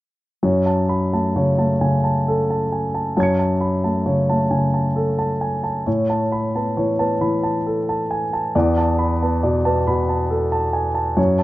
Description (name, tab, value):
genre	neoclassical minimalist piano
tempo	45 BPM (dotted quarters)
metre	6/8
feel	rubato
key	F# minor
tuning	A4 = 441 Hz
part	dark concert grand piano	solo	0.4-11.4 s	E2 to C#7	-17 LUFS	equal	none
room	light reverb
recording	rough home demo mix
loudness	-17 LUFS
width	side -16 dB against mid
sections	0.4-11.4 A section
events	none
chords	0.4 F#madd9; 5.9 Aadd9; 8.5 E7sus4